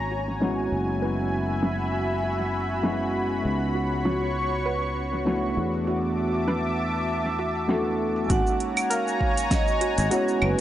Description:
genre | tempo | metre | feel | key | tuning
sunset chillout | 99 BPM | 4/4 | swing 55% on 16ths | unclear | A4 = 441 Hz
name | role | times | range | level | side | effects
tine electric piano | accompaniment | 0.0-10.6 s | Ab3 to Gb4 | -29 LUFS | equal | auto-pan, analog delay
lush unison pad | sustained chords | 0.0-10.6 s | Gb4 to D6 | -28 LUFS | left 1 dB | chorus
sustaining fretless electric bass | bass | 0.0-10.5 s | Gb1 to E2 | -29 LUFS | equal | none
soft round pluck | arpeggios | 0.1-10.4 s | Gb4 to Cb5 | -34 LUFS | right 2 dB | chorus, analog delay
smooth R&B drum kit | drums | 0.1-10.6 s | claves, hi-hat, shaker, snare drum | -29 LUFS | equal | overdrive, low-pass filter on perc, small room reverb, low-pass filter on snare, low-pass filter on hats, low-pass filter on cymbals
vibraphone with medium mallets | melody | 7.7-10.6 s | A4 to Ab5 | -28 LUFS | right 2 dB | analog delay
electronic kick drum | drums | 8.3-9.6 s | none | -25 LUFS | equal | overdrive, small room reverb
room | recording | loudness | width
light reverb | dry, gritty hardware recording, nothing above 10.7 kHz | -23 LUFS | side -12 dB against mid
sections
0.0-8.3 A section; 8.3-10.6 B section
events
filter sweep on synth pluck 0.0-8.3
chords
0.0 Ab9sus4; 0.7 Gb9sus4; 3.4 Db9sus4; 5.6 E9sus4; 8.3 Ab9sus4

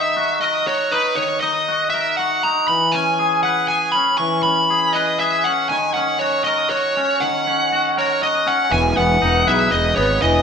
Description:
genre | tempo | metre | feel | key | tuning
rock | 119 BPM | 3/4 | straight | unclear | A4 = 440 Hz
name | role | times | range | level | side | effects
smooth overdriven lead guitar | melody | 0.0-10.4 s | B4 to C#6 | -18 LUFS | right 1 dB | none
twangy electric guitar | arpeggios | 0.0-10.4 s | D#3 to B4 | -20 LUFS | left 2 dB | spring reverb
fuzz fingered electric bass | bass | 8.7-10.4 s | E1 to B1 | -20 LUFS | right 1 dB | overdrive
vibraphone with medium hard mallets | arpeggios | 9.0-10.4 s | G#4 to B4 | -24 LUFS | right 2 dB | none
room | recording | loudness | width
wet stone room reverb, RT60 1.3 s | band playing live in one room | -16 LUFS | side -6 dB against mid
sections
0.0-8.7 A section; 8.7-10.4 A section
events
none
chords
0.0 D#m; 2.7 C#m7/E; 5.7 D#m7; 8.7 Emaj7

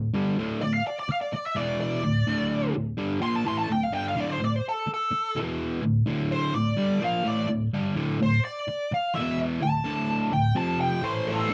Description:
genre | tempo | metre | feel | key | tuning
rock | 126 BPM | 4/4 | straight | D minor | A4 = 440 Hz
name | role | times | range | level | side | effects
distorted electric guitar | riff | 0.0-11.5 s | D2 to Bb3 | -28 LUFS | equal | distortion
bluesy overdriven lead guitar | melody | 0.6-11.5 s | A4 to C6 | -30 LUFS | equal | wah, distortion, slapback echo
room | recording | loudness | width
light reverb | dry, close 1970s-style studio recording | -27 LUFS | mono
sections
0.0-11.5 A section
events
lead electric guitar solo 0.0-11.5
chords
0.0 D5; 1.6 E5; 2.0 D5; 5.4 E5; 5.8 D5; 9.2 E5; 9.6 D5; 10.6 F5; 11.0 A5

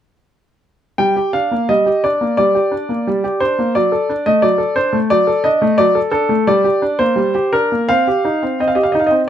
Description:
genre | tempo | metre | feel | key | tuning
classical-period piano sonatina | 88 BPM | 4/4 | rubato | G minor | A4 = 438 Hz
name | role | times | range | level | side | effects
clear baby grand piano | solo | 1.0-9.3 s | F#3 to G5 | -13 LUFS | equal | none
room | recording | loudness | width
light reverb | none | -13 LUFS | side -10 dB against mid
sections
1.0-9.3 A section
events
none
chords
1.0 Gm; 3.8 D/F#; 6.5 Gm; 7.9 Cm

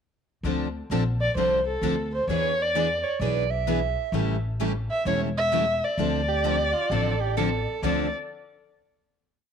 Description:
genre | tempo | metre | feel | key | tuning
acoustic string swing (jazz manouche) | 130 BPM | 4/4 | swing 64% on 8ths | D minor | A4 = 440 Hz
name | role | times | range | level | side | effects
picked steel-string acoustic guitar | accompaniment | 0.4-8.1 s | C#3 to A4 | -30 LUFS | left 14 dB | none
upright bass | bass | 0.4-8.1 s | E1 to E2 | -29 LUFS | equal | none
picked steel-string acoustic guitar | accompaniment | 0.5-8.1 s | D3 to B4 | -32 LUFS | right 10 dB | none
dark violin | melody | 1.2-8.1 s | A4 to E5 | -25 LUFS | equal | none
mellow soprano saxophone | second line | 3.0-8.1 s | F4 to E5 | -29 LUFS | right 9 dB | none
room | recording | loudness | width
wet spring reverb, RT60 1.3 s, small room ambience | 1960s-style stereo with parts hard left and right | -23 LUFS | side -7 dB against mid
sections
0.4-7.8 A section; 7.8-9.5 final chord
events
none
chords
0.4 Dm7; 2.3 E7; 4.1 A7; 6.0 Dm7

